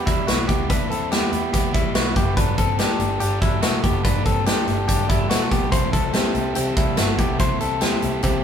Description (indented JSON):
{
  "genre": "jangly indie pop",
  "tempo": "143 BPM",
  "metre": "4/4",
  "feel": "straight",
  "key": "G major",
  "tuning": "A4 = 441 Hz",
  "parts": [
    { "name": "overdriven electric guitar", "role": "accompaniment", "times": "0.0-8.4 s", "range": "C3 to B4", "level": "-28 LUFS", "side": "right 3 dB", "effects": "none" },
    { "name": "direct-recorded clean electric guitar", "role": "arpeggios", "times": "0.0-8.4 s", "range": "G3 to C5", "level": "-24 LUFS", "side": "left 2 dB", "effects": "none" },
    { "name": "vintage muted picked electric bass", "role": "bass", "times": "0.0-8.4 s", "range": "E1 to E2", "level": "-26 LUFS", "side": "equal", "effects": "none" },
    { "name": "big rock drum kit", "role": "drums", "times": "0.1-8.3 s", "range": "hi-hat, kick drum, snare drum", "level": "-20 LUFS", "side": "equal", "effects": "none" }
  ],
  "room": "moderate large studio reverb, RT60 1.1 s",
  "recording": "band playing live in one room",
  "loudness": "-18 LUFS",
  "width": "side -8 dB against mid",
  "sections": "0.0-8.4 A section",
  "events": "none",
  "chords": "0.0 Em7; 2.4 Gsus2; 5.7 C6",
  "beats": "0.28 | 0.70 1.12 1.53 1.95 | 2.37 2.79 3.21 3.63 | 4.05 4.47 4.89 5.30 | 5.72 6.14 6.56 6.98 | 7.40 7.82 8.24"
}